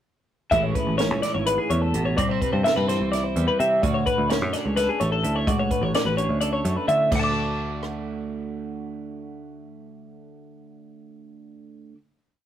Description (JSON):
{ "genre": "math rock and midwest emo", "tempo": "254 BPM (eighths)", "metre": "7/8", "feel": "straight", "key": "D lydian", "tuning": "A4 = 440 Hz", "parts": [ { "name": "twelve-string electric guitar", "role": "accompaniment", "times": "0.5-12.0 s", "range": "D2 to A4", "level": "-30 LUFS", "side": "right 5 dB", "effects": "none" }, { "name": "twelve-string electric guitar", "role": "arpeggios", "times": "0.5-12.0 s", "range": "G#4 to D6", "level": "-24 LUFS", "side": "left 2 dB", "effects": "none" }, { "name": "picked electric bass", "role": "bass", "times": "0.5-11.9 s", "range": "G#1 to D3", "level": "-26 LUFS", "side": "equal", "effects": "none" }, { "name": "compact cocktail drum kit", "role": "drums", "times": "0.5-7.9 s", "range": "crash cymbal, hi-hat, kick drum, rim click, snare drum", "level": "-28 LUFS", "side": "equal", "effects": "none" } ], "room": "light reverb", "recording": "rough rehearsal-room recording", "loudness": "-21 LUFS", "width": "side -10 dB against mid", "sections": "0.5-7.1 A section; 7.1-10.4 final chord", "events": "none", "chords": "0.5 Amaj7; 2.2 C; 3.8 Dmaj7; 7.1 D" }